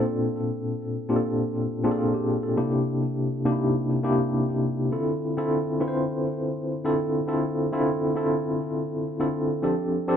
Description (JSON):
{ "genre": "pop", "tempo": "102 BPM", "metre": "4/4", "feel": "swing 54% on 16ths", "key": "D minor", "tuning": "A4 = 440 Hz", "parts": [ { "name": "tine electric piano", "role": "solo", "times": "0.0-10.2 s", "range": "Bb2 to C5", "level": "-23 LUFS", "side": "equal", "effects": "medium tremolo, digital delay" } ], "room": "moderate studio reverb, RT60 0.7 s", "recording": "band playing live in one room", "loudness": "-23 LUFS", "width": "side -8 dB against mid", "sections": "0.0-4.9 A section; 4.9-10.2 B section", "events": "none", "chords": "0.0 Bbmaj7; 2.6 C7; 4.9 Dm9; 9.6 F69", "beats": "| 0.20 0.79 1.38 1.97 | 2.56 3.15 3.74 4.33 | 4.92 5.51 6.09 6.68 | 7.27 7.86 8.45 9.04 | 9.63" }